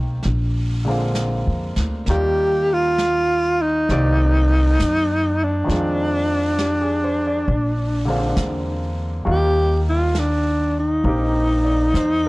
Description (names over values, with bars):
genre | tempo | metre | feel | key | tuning
jazz ballad | 67 BPM | 4/4 | swing 67% on 8ths | Eb major | A4 = 440 Hz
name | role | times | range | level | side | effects
clear concert grand piano | accompaniment | 0.0-12.3 s | D3 to G5 | -26 LUFS | equal | none
upright bass | bass | 0.0-12.3 s | Bb1 to Gb2 | -21 LUFS | equal | none
jazz brush drum kit | drums | 0.2-12.3 s | brushed snare drum, hi-hat, snare drum | -34 LUFS | right 1 dB | none
warm alto saxophone | melody | 2.1-12.3 s | D4 to G4 | -19 LUFS | equal | none
room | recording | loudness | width
studio ambience | dry, gritty hardware recording, transformer saturation | -17 LUFS | side -22 dB against mid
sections
0.0-12.3 A section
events
none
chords
0.2 Bb7; 2.1 Ebmaj7; 3.9 Cm9; 5.7 Fm7; 7.5 Bb7; 9.3 Ebmaj9